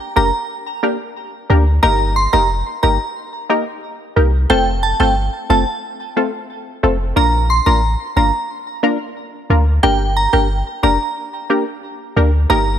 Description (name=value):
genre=dancehall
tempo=90 BPM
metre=4/4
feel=straight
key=G minor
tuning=A4 = 440 Hz
part: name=glassy synth bell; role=melody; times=0.2-12.6 s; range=G5 to C6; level=-19 LUFS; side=right 1 dB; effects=chorus, tape echo
part: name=punchy chord stab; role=accompaniment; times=0.2-12.8 s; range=A3 to Bb4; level=-19 LUFS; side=left 1 dB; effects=chorus
part: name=clean 808-style bass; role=bass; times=0.2-12.8 s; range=F1 to D2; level=-16 LUFS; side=equal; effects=none
room=light reverb, digital ambience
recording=none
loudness=-14 LUFS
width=side -9 dB against mid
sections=0.0-12.8 A section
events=none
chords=0.0 Gm; 1.8 Eb; 4.5 F; 7.2 Bb; 9.8 Gm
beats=0.50 1.17 | 1.83 2.50 3.17 3.83 | 4.50 5.17 5.83 6.50 | 7.17 7.83 8.50 9.16 | 9.83 10.50 11.16 11.83 | 12.50